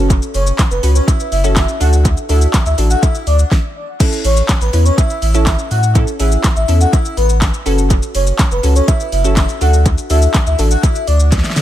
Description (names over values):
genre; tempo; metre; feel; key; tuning
dance-pop; 123 BPM; 4/4; straight; A major; A4 = 439 Hz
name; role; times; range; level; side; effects
glassy wavetable pluck; accompaniment; 0.0-11.1 s; C#4 to B4; -21 LUFS; right 1 dB; chorus, sidechain pumping
saturated sub bass; bass; 0.0-11.6 s; F#1 to D3; -13 LUFS; equal; sidechain pumping
smooth R&B drum kit; drums; 0.1-11.6 s; crash cymbal, handclaps, hi-hat, kick drum, shaker, snare drum; -16 LUFS; equal; overdrive, analog delay
airy dreamy lead; melody; 0.3-11.2 s; B4 to F#5; -20 LUFS; left 1 dB; chorus, sidechain pumping, analog delay
room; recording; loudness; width
little or no reverb; echo-heavy mix; -11 LUFS; side -12 dB against mid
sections
0.0-4.0 A section; 4.0-11.6 A section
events
drop 0.0-4.0, 4.0-11.6; stop 3.5-4.0; drum fill 11.3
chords
0.0 F#m; 1.8 D; 4.0 A; 7.7 F#m; 9.6 D